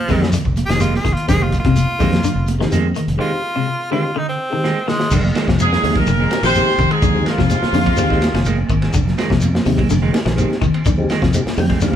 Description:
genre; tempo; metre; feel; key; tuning
afrobeat; 126 BPM; 4/4; straight; F dorian; A4 = 440 Hz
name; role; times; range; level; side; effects
edgy tenor saxophone; melody; 0.0-5.1 s; F3 to Ab4; -22 LUFS; equal; none
clean electric guitar; stabs; 0.0-12.0 s; Eb3 to C4; -26 LUFS; right 5 dB; spring reverb
percussive tonewheel organ; accompaniment; 0.1-12.0 s; Ab3 to G5; -25 LUFS; left 2 dB; slow rotary speaker, chorus vibrato
electric guitar at the edge of break-up; arpeggios; 0.1-12.0 s; C3 to Eb3; -22 LUFS; left 3 dB; phaser
fingered electric bass; bass; 0.1-12.0 s; F1 to F2; -20 LUFS; equal; none
crunchy breakbeat drum kit; drums; 0.1-12.0 s; crash cymbal, hi-hat, kick drum, ride cymbal, snare drum; -21 LUFS; equal; none
congas; percussion; 0.1-11.9 s; none; -24 LUFS; right 5 dB; none
shekere; percussion; 0.1-11.9 s; none; -25 LUFS; left 2 dB; none
clear horn section; melody; 5.6-8.7 s; F4 to C5; -19 LUFS; right 1 dB; none
breathy baritone saxophone; second line; 5.6-8.7 s; F2 to C3; -26 LUFS; left 2 dB; none
room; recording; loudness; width
moderate large studio reverb, RT60 0.9 s; band playing live in one room; -14 LUFS; side -10 dB against mid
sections
0.0-5.1 A section; 5.1-12.0 B section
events
tenor saxophone solo 0.0-5.1; break 3.2-5.1; drum fill 4.6-5.1; tonewheel organ fill 11.3-12.0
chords
0.0 Fm7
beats
0.33 0.81 | 1.29 1.76 2.24 2.72 | 3.20 3.67 4.15 4.63 | 5.11 5.58 6.06 6.54 | 7.02 7.50 7.98 8.46 | 8.94 9.41 9.89 10.37 | 10.85 11.33 11.81

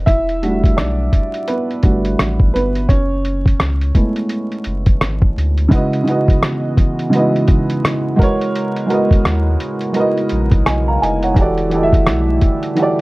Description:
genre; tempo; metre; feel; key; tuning
lo-fi hip hop; 85 BPM; 4/4; swing 60% on 16ths; C# minor; A4 = 440 Hz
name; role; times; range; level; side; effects
dark upright piano; accompaniment; 0.0-13.0 s; C#3 to A#5; -17 LUFS; right 1 dB; low-pass filter
saturated sub bass; bass; 0.0-12.4 s; E1 to D#2; -19 LUFS; equal; none
lo-fi sampler-style drum kit; drums; 0.1-13.0 s; hi-hat, kick drum, rim click; -14 LUFS; equal; none
warbly tape-like pad; sustained chords; 6.4-13.0 s; C#3 to D#5; -23 LUFS; right 1 dB; chorus, built-in reverb, low-pass filter
room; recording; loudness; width
light reverb; vinyl crackle; -13 LUFS; side -21 dB against mid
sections
0.0-5.7 A section; 5.7-13.0 A section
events
upright piano solo 0.0-5.7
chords
0.1 Em11; 2.9 F#m11; 5.7 C#m11; 8.2 G#m11; 11.4 Em11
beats
| 0.07 0.78 1.48 2.19 | 2.89 3.60 4.30 5.01 | 5.72 6.42 7.13 7.83 | 8.54 9.25 9.95 10.66 | 11.36 12.07 12.78

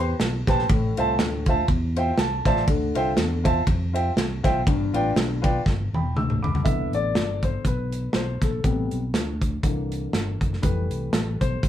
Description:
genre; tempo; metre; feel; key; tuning
uptempo gospel; 121 BPM; 4/4; swing 55% on 8ths; C major; A4 = 441 Hz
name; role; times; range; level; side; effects
warm upright piano; accompaniment; 0.0-11.7 s; G2 to E6; -26 LUFS; left 1 dB; none
fingered electric bass; bass; 0.0-11.7 s; E1 to F2; -27 LUFS; equal; none
modern studio drum kit; drums; 0.2-11.7 s; hi-hat, kick drum, ride cymbal, snare drum, toms; -24 LUFS; equal; none
room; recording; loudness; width
moderate studio ambience, RT60 0.5 s; band playing live in one room; -21 LUFS; side -11 dB against mid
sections
0.0-6.7 A section; 6.7-11.7 B section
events
upright piano fill 1.9-2.7; drum fill 5.7-6.7; upright piano solo 6.7-11.7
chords
0.0 Am9; 0.7 Fmaj7/A; 2.7 Dm11; 4.7 G7; 6.7 Cmaj7; 8.6 Am7; 9.6 C7; 10.6 Fmaj7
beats
0.20 | 0.69 1.19 1.69 2.18 | 2.68 3.18 3.67 4.17 | 4.67 5.16 5.66 6.16 | 6.65 7.15 7.65 8.15 | 8.64 9.14 9.64 10.14 | 10.64 11.14 11.64

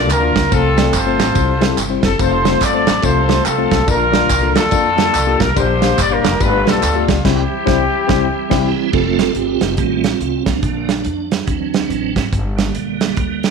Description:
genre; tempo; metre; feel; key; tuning
uptempo gospel; 142 BPM; 4/4; swing 61% on 8ths; F major; A4 = 445 Hz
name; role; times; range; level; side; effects
warm horn section; melody; 0.0-8.7 s; C4 to D5; -17 LUFS; left 1 dB; slapback echo
tine electric piano; accompaniment; 0.0-8.7 s; G2 to F5; -19 LUFS; left 14 dB; slow stereo tremolo
tonewheel organ; sustained chords; 0.0-13.5 s; C3 to Bb4; -22 LUFS; right 8 dB; slow rotary speaker, overdrive, chorus vibrato
upright bass; bass; 0.0-13.5 s; F1 to F2; -21 LUFS; left 1 dB; none
warm soul drum kit; drums; 0.1-13.5 s; crash cymbal, hi-hat, kick drum, ride cymbal, snare drum; -19 LUFS; right 4 dB; none
handclaps and tambourine; percussion; 0.1-7.2 s; none; -25 LUFS; right 4 dB; none
room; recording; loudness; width
moderate echo chamber reverb, RT60 1.3 s, small room ambience; 1960s-style stereo with parts hard left and right; -13 LUFS; side -5 dB against mid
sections
0.0-8.9 A section; 8.9-13.5 B section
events
band accent 7.2-8.9; tonewheel organ solo 8.9-13.5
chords
0.0 C9sus4; 0.5 F/C; 1.4 C; 2.2 F; 3.9 Bb; 5.6 Gm/Bb; 6.4 G9; 7.2 C; 8.9 F; 9.8 F7/A; 10.6 Bb; 11.5 D7; 12.3 Gm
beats
0.10 | 0.52 0.94 1.36 1.78 | 2.20 2.62 3.04 3.46 | 3.88 4.30 4.72 5.14 | 5.56 5.99 6.41 6.83 | 7.25 7.67 8.09 8.52 | 8.94 9.36 9.78 10.21 | 10.63 11.05 11.48 11.90 | 12.33 12.75 13.18

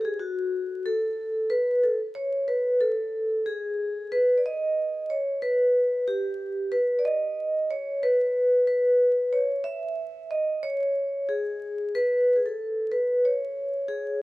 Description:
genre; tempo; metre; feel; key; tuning
hip hop; 92 BPM; 4/4; swing 58% on 16ths; C# minor; A4 = 440 Hz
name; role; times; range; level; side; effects
vibraphone with medium mallets; solo; 0.0-14.2 s; F#4 to E5; -23 LUFS; equal; none
room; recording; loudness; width
moderate plate reverb, RT60 3.4 s; worn, warbling old tape, cassette tape, vinyl crackle, warbly pitch drift; -23 LUFS; side -18 dB against mid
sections
0.0-14.2 A section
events
vibraphone solo 0.0-14.2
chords
none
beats
0.19 0.85 | 1.50 2.15 2.80 3.46 | 4.11 4.76 5.41 6.06 | 6.72 7.37 8.02 8.67 | 9.32 9.98 10.63 11.28 | 11.93 12.59 13.24 13.89

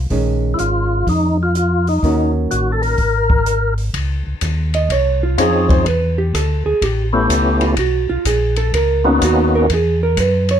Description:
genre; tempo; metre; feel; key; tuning
soul jazz organ trio; 125 BPM; 4/4; swing 66% on 8ths; Bb minor; A4 = 441 Hz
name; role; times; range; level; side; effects
mellow tonewheel organ; bass; 0.0-10.6 s; Ab1 to Gb2; -18 LUFS; equal; chorus vibrato, slow rotary speaker
vintage hollow-body jazz guitar; accompaniment; 0.1-10.6 s; Eb3 to Eb5; -19 LUFS; right 4 dB; none
open jazz drum kit; drums; 0.1-10.6 s; hi-hat, kick drum, ride cymbal; -22 LUFS; left 1 dB; none
percussive tonewheel organ; melody; 0.5-9.7 s; F3 to Bb4; -17 LUFS; left 2 dB; slow rotary speaker, overdrive, chorus vibrato
room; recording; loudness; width
light reverb; dark, warm production; -14 LUFS; side -9 dB against mid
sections
0.0-3.9 A section; 3.9-10.6 B section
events
hollow-body jazz guitar solo 3.9-10.6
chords
0.1 Bbm7; 2.0 Ebm7; 3.0 Absus2; 3.9 Dbmaj9; 5.9 G69; 6.8 A9; 7.8 Cbmaj7; 9.7 E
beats
| 0.11 0.59 1.07 1.55 | 2.03 2.51 2.99 3.47 | 3.95 4.42 4.91 5.38 | 5.86 6.34 6.82 7.30 | 7.78 8.26 8.74 9.22 | 9.70 10.18

